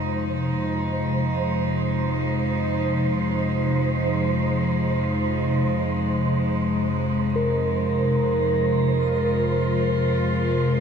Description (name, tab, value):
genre	dark ambient drone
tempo	free time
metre	none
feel	none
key	F minor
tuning	A4 = 442 Hz
part	rich chamber cello section	sustained chords	0.0-10.8 s	F3 to F4	-25 LUFS	equal	shimmer reverb
part	bronze singing bowl	arpeggios	0.0-10.8 s	C3 to Bb4	-28 LUFS	right 2 dB	tape echo, shimmer reverb
part	deep rumbling drone	drone	0.0-10.8 s	F2 to C3	-24 LUFS	left 1 dB	built-in reverb, phaser
part	wind-like tuned noise texture	texture	0.0-10.8 s	C5	-29 LUFS	right 4 dB	built-in reverb, ensemble chorus, shimmer reverb
room	wet lush hall reverb, RT60 3.1 s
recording	dreamy mix soaked in reverb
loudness	-20 LUFS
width	side -7 dB against mid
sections	0.0-10.8 A section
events	none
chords	0.0 Fm